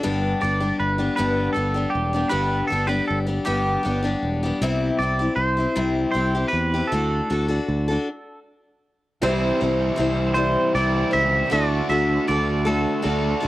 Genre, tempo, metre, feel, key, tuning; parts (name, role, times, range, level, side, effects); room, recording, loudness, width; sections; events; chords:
folk rock and heartland rock; 52 BPM (dotted quarters); 6/8; straight; G major; A4 = 435 Hz
picked steel-string acoustic guitar; accompaniment; 0.0-13.5 s; G2 to C5; -24 LUFS; left 2 dB; cassette tape
modern bright fingered electric bass; bass; 0.1-13.5 s; E1 to E2; -25 LUFS; right 1 dB
twangy electric guitar; melody; 0.4-13.5 s; G4 to E5; -24 LUFS; right 1 dB; cassette tape
warm concert grand piano; accompaniment; 9.2-13.5 s; E4 to D5; -32 LUFS; right 2 dB; cassette tape
biting overdriven guitar; riff; 9.2-13.5 s; C3 to F#4; -26 LUFS; right 1 dB; cassette tape
light reverb, small room ambience; home recording on cassette; -19 LUFS; side -16 dB against mid
0.0-9.2 A section; 9.2-13.5 B section
stop 8.1-9.2
0.1 G; 4.6 C; 6.9 D; 9.2 C; 11.5 D